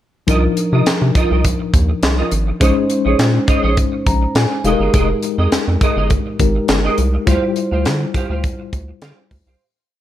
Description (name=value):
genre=early-eighties boogie funk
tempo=103 BPM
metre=4/4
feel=straight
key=unclear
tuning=A4 = 439 Hz
part: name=mellow tine electric piano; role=accompaniment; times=0.3-9.6 s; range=F3 to Bb5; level=-19 LUFS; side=left 3 dB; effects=medium stereo tremolo
part: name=semi-hollow electric guitar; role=riff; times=0.3-9.6 s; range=F4 to F5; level=-22 LUFS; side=right 4 dB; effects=ensemble chorus
part: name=rubbery square bass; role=bass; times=0.3-9.6 s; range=F1 to D3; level=-17 LUFS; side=equal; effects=none
part: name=tight funk drum kit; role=drums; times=0.3-9.5 s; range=handclaps, hi-hat, kick drum, snare drum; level=-18 LUFS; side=equal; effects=gated reverb
room=small room ambience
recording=none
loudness=-14 LUFS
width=side -12 dB against mid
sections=0.3-9.6 verse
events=tine electric piano fill 3.8-4.9; fade-out 7.3-9.6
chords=0.3 Cm11; 2.6 Bbm11; 4.6 Fm11; 7.3 Dm11